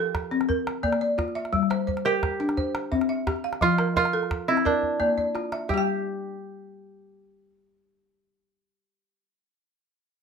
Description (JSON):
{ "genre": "west african traditional, West African string and xylophone music", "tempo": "115 BPM (dotted quarters)", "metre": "12/8", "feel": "straight", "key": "unclear", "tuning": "A4 = 440 Hz", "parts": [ { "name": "kora", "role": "melody", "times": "0.0-9.2 s", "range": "D4 to G4", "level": "-26 LUFS", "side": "right 4 dB", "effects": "none" }, { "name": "balafon", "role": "arpeggios", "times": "0.0-9.4 s", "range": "F3 to G5", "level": "-25 LUFS", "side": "left 2 dB", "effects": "none" }, { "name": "calabash", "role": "percussion", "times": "0.1-5.9 s", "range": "none", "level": "-32 LUFS", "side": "right 1 dB", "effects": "none" } ], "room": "moderate studio reverb, RT60 0.6 s", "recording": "minimal, uncompressed stereo recording", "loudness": "-23 LUFS", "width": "side -6 dB against mid", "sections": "0.0-5.7 A section; 5.7-9.9 B section", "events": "drum fill 4.8-5.7", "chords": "0.5 Bb; 1.5 Gm; 2.6 C; 3.6 F; 4.7 Bb; 5.7 N.C.", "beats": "0.49 1.01 | 1.53 2.05 2.57 3.09 | 3.61 4.13 4.65 5.17 | 5.69 6.21 6.74 7.25 | 7.78 8.30 8.82 9.34" }